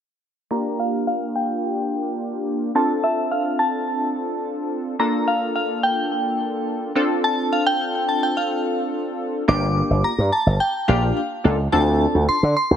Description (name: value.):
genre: pop.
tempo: 107 BPM.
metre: 4/4.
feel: straight.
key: unclear.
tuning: A4 = 440 Hz.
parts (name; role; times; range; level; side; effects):
glassy synth bell; melody; 0.5-12.8 s; E5 to D6; -23 LUFS; equal; chorus, tremolo, low-pass filter, ping-pong delay.
funky polysynth comp; accompaniment; 0.5-12.4 s; Bb3 to A4; -23 LUFS; equal; chorus, low-pass filter.
slap bass with an envelope filter; bass; 9.5-12.8 s; G1 to D3; -18 LUFS; equal; none.
room: light reverb.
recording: none.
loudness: -19 LUFS.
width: side -9 dB against mid.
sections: 0.5-9.5 A section; 9.5-12.8 B section.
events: filter sweep 0.5-9.5.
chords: 0.5 Gm7; 2.8 Dm7; 5.0 Bbmaj7; 7.0 Dm7; 9.5 Gm7; 11.7 Dm7.